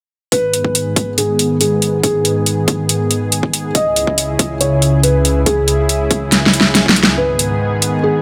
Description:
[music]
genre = heavy wobble dubstep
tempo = 140 BPM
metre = 4/4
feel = half-time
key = G# minor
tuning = A4 = 440 Hz
[part]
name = felt-muted upright piano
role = melody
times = 0.3-8.2 s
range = G#4 to D#5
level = -21 LUFS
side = equal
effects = dub echo
[part]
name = lush unison pad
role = sustained chords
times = 0.3-8.2 s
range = C#2 to G#4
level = -19 LUFS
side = equal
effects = chorus, sidechain pumping
[part]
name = dubstep drum kit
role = drums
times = 0.3-7.9 s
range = hi-hat, snare drum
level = -16 LUFS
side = equal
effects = none
[part]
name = electronic kick drum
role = drums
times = 0.3-6.9 s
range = none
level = -22 LUFS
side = equal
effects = high-pass filter on kick
[sound]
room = light reverb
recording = none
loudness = -15 LUFS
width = mono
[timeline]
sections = 0.3-7.2 A section; 7.2-8.2 B section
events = filter sweep on analog synth pad 0.3-7.2; drum fill 6.3-7.2; build-up 7.2-8.2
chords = 0.3 G#m; 3.7 C#m; 7.2 G#m

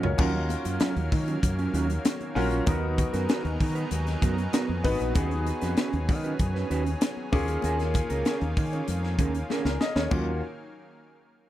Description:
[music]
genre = polished 1980s jazz-funk pop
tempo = 97 BPM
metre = 4/4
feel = straight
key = Eb minor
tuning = A4 = 442 Hz
[part]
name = clear baby grand piano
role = accompaniment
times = 0.0-10.4 s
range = Bb3 to Eb5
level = -32 LUFS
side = left 2 dB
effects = wide subtle chorus
[part]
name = lush unison pad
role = sustained chords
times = 0.0-10.4 s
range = Eb3 to F5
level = -36 LUFS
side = equal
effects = chorus
[part]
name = mellow electric guitar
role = riff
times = 0.0-10.3 s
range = Gb3 to Db5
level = -32 LUFS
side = right 5 dB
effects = lush chorus
[part]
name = fingered electric bass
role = bass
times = 0.0-10.4 s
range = Ab1 to Eb3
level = -29 LUFS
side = equal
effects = none
[part]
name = crisp fusion drum kit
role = drums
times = 0.0-10.3 s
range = crash cymbal, hi-hat, kick drum, snare drum, toms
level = -28 LUFS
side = equal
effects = none
[part]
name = congas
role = percussion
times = 0.2-10.4 s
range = none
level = -40 LUFS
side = left 12 dB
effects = none
[sound]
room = little or no reverb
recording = none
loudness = -24 LUFS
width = side -13 dB against mid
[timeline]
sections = 0.2-10.1 A section; 10.1-11.5 B section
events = drum fill 0.0, 9.5-10.1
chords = 0.2 Ebm9; 2.7 Abm9/Eb; 5.2 Db7sus4/Eb; 7.3 Bbm7; 10.1 Ebm9

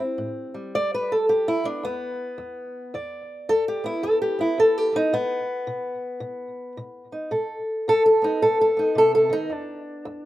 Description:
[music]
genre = acoustic country blues, solo or duo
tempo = 110 BPM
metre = 4/4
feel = swing 63% on 8ths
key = E minor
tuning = A4 = 441 Hz
[part]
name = fingerpicked old ladder-braced acoustic guitar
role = solo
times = 0.0-10.3 s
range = E2 to D5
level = -21 LUFS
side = equal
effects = none
[sound]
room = little or no reverb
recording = recorded outdoors, with no room sound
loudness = -20 LUFS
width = side -15 dB against mid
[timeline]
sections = 0.0-10.3 A section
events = steel-string acoustic guitar solo 0.0-10.3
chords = 0.0 Am7; 0.7 Em7; 5.1 B7; 9.5 E7(no3)

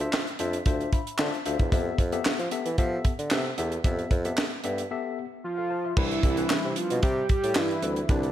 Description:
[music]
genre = early-eighties boogie funk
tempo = 113 BPM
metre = 4/4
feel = straight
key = unclear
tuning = A4 = 440 Hz
[part]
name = barky tine electric piano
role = accompaniment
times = 0.0-8.3 s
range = G3 to C6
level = -32 LUFS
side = moving between left 9 dB and left 1 dB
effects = auto-pan, slapback echo
[part]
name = warm bassoon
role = bass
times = 0.0-8.3 s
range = C2 to F3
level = -30 LUFS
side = equal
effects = none
[part]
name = tight funk drum kit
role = drums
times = 0.0-8.3 s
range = crash cymbal, handclaps, hi-hat, kick drum, snare drum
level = -26 LUFS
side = equal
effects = none
[part]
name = fat analog lead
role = melody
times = 5.4-8.3 s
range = D4 to G4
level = -28 LUFS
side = right 1 dB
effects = slapback echo
[sound]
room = light reverb, studio reverb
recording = none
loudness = -24 LUFS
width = side -12 dB against mid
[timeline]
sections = 0.0-6.0 A section; 6.0-8.3 B section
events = tine electric piano fill 0.7-1.7; break 4.9-6.0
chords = 0.0 Dm9; 1.7 Fmaj9#11; 6.0 Cmaj9

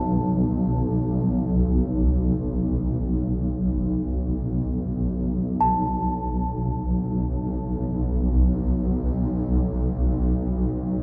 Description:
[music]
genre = world meditative, free-time meditation music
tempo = free time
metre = none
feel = none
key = unclear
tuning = A4 = 440 Hz
[part]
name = granular cloud pad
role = drone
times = 0.0-11.0 s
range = B1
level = -24 LUFS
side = equal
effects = built-in reverb
[part]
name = celesta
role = texture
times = 0.0-11.0 s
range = F#5 to A5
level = -31 LUFS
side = equal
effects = none
[sound]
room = wet huge ambient reverb, RT60 5.9 s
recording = dark, warm production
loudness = -24 LUFS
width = mono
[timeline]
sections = 0.0-5.2 A section; 5.2-11.0 A section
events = none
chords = none

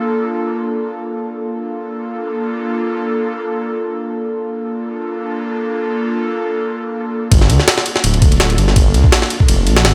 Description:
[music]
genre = drum and bass, jungle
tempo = free time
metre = none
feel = none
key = unclear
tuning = A4 = 440 Hz
[part]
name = airy breathy pad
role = sustained chords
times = 0.0-9.8 s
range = Bb3 to A4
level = -22 LUFS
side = equal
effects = chorus
[part]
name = detuned saw bass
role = bass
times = 7.3-9.9 s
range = D1 to D2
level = -16 LUFS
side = equal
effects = none
[part]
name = jungle sampler-style drum kit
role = drums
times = 7.3-9.9 s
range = kick drum, ride cymbal, snare drum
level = -14 LUFS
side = equal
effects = none
[sound]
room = light reverb, digital ambience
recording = none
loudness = -17 LUFS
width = mono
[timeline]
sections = 0.0-7.3 A section; 7.3-9.9 B section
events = filter sweep on analog synth pad 0.0-7.3; drop 7.3-9.9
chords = 0.0 Bbmaj7; 7.3 Gm7

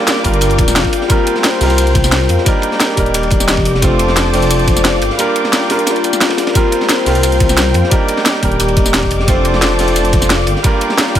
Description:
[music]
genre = liquid drum and bass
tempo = 176 BPM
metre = 4/4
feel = straight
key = G minor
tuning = A4 = 438 Hz
[part]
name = clear concert grand piano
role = accompaniment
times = 0.0-11.2 s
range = G3 to C5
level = -18 LUFS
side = right 3 dB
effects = digital delay
[part]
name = muted studio string section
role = sustained chords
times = 0.0-11.2 s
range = Bb4 to D6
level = -21 LUFS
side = right 1 dB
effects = none
[part]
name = vibraphone with soft mallets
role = arpeggios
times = 0.1-11.2 s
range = F4 to F5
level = -19 LUFS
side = left 8 dB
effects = ping-pong delay
[part]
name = crunchy breakbeat drum kit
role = drums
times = 0.1-11.2 s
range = hi-hat, ride cymbal, snare drum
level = -22 LUFS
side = equal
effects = high-pass filter on cymbals, high-pass filter on hats, high-pass filter on snare, high-pass filter on room
[part]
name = drum and bass drum kit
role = drums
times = 0.1-11.2 s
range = hi-hat, snare drum, tambourine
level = -17 LUFS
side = equal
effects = overdrive
[part]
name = dark detuned saw bass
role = bass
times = 0.2-11.2 s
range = D1 to F2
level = -16 LUFS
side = right 1 dB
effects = none
[part]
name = electronic kick drum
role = drums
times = 0.2-11.2 s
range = none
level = -15 LUFS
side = equal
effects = overdrive
[sound]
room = light reverb, studio reverb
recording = none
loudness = -10 LUFS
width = side -10 dB against mid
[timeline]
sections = 0.0-11.2 A section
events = none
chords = 0.0 Gm7; 1.1 C7sus4; 2.5 Ebmaj7; 3.8 Dm7/F; 5.0 Gm7; 6.6 C7sus4; 7.9 Ebmaj7; 9.3 Dm7/F; 10.5 Gm7

